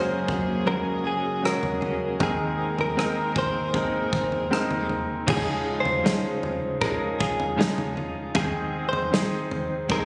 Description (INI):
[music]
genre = pop ballad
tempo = 78 BPM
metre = 4/4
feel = straight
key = Db major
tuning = A4 = 440 Hz
[part]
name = direct-recorded clean electric guitar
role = melody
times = 0.0-10.1 s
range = Ab4 to C5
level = -31 LUFS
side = equal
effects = none
[part]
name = clear grand piano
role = accompaniment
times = 0.0-10.1 s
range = Db2 to Db5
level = -31 LUFS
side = equal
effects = none
[part]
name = warm studio string section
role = sustained chords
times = 0.0-5.3 s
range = Gb2 to Bb4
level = -34 LUFS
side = equal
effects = none
[part]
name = direct-recorded clean electric guitar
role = arpeggios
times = 0.0-10.1 s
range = Ab2 to Ab4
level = -35 LUFS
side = equal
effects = tremolo, delay
[part]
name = natural country drum kit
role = drums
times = 0.3-10.1 s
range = crash cymbal, kick drum, rim click, snare drum, toms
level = -32 LUFS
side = equal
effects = none
[sound]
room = light reverb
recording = recorded on a phone in the room, studio reverb, compression, nothing above 10.9 kHz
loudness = -26 LUFS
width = mono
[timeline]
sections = 0.0-5.3 A section; 5.3-10.1 B section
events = none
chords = 0.0 Gbadd9; 2.2 Abadd9; 5.3 Dbadd9; 8.4 Ab